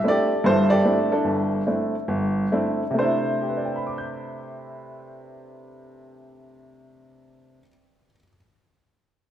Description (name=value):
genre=solo jazz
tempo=131-154 BPM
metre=4/4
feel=swing 66% on 8ths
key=C major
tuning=A4 = 440 Hz
part: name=warm upright piano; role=solo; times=0.0-8.3 s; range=G1 to G6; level=-21 LUFS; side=equal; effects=none
room=wet recital hall reverb, RT60 1.7 s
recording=recorded in a church or concert hall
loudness=-20 LUFS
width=side -10 dB against mid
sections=0.0-3.0 A section; 3.0-6.6 B section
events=slowing down 0.0-3.0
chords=0.0 C69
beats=0.04 0.43 0.83 | 1.23 1.65 2.07 2.50 | 2.95 3.41 3.86 4.32 | 4.78 5.23 5.69 6.15